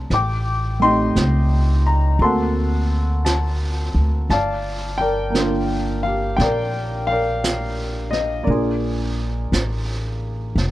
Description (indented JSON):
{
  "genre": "jazz ballad",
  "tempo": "57 BPM",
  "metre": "4/4",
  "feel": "swing 67% on 8ths",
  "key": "G minor",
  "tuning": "A4 = 436 Hz",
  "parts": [
    { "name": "warm concert grand piano", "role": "accompaniment", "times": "0.0-10.7 s", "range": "D3 to D6", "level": "-21 LUFS", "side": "left 1 dB", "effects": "none" },
    { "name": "upright bass", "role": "bass", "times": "0.0-10.7 s", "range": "F1 to D2", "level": "-21 LUFS", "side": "equal", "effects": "none" },
    { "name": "vintage brush drum kit", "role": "drums", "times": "0.1-10.7 s", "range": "brushed snare drum, hi-hat, snare drum", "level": "-28 LUFS", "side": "right 2 dB", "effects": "none" }
  ],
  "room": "little or no reverb",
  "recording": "none",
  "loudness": "-18 LUFS",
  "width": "side -15 dB against mid",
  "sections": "0.0-10.7 A section",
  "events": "none",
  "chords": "0.1 Am7b5; 2.2 D7b13; 4.3 Gm7; 8.5 Bb7",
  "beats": "| 0.11 1.16 2.20 3.25 | 4.29 5.34 6.38 7.43 | 8.47 9.52 10.56"
}